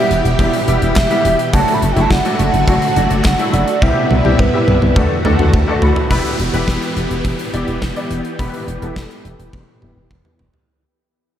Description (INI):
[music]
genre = synth-pop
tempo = 105 BPM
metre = 4/4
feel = straight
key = E minor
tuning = A4 = 440 Hz
[part]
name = hollow clarinet-like synth lead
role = melody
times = 0.0-5.2 s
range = B4 to B5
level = -19 LUFS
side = right 2 dB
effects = chorus, diffuse ambient delay
[part]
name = clear baby grand piano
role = accompaniment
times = 0.0-10.5 s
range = F#3 to B5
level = -21 LUFS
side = left 2 dB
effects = ensemble chorus, low-pass filter
[part]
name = string machine, violins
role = sustained chords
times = 0.0-10.6 s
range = B2 to G4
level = -20 LUFS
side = equal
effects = ensemble chorus, low-pass filter
[part]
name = solid FM bass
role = bass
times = 0.1-10.5 s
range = E1 to D2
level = -18 LUFS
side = equal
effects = none
[part]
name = gated 80s drum kit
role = drums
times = 0.1-10.7 s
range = handclaps, hi-hat, kick drum, snare drum, toms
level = -18 LUFS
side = equal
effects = none
[part]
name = downlifter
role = sound effects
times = 6.1-10.7 s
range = none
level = -30 LUFS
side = equal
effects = none
[sound]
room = wet huge ambient reverb, RT60 9.7 s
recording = dreamy mix soaked in reverb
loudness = -13 LUFS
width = side -10 dB against mid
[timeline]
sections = 0.0-6.1 A section; 6.1-10.7 B section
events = drum fill 3.8-6.1, 9.5-10.7; grand piano fill 5.0-6.1; fade-out 6.1-10.7; filter sweep 6.1-10.7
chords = 0.0 Em; 1.5 D/F#; 3.8 Cmaj7; 5.0 D; 6.1 Em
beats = 0.39 0.96 | 1.53 2.11 2.68 3.25 | 3.82 4.39 4.96 5.54 | 6.11 6.68 7.25 7.82 | 8.39 8.96 9.54 10.11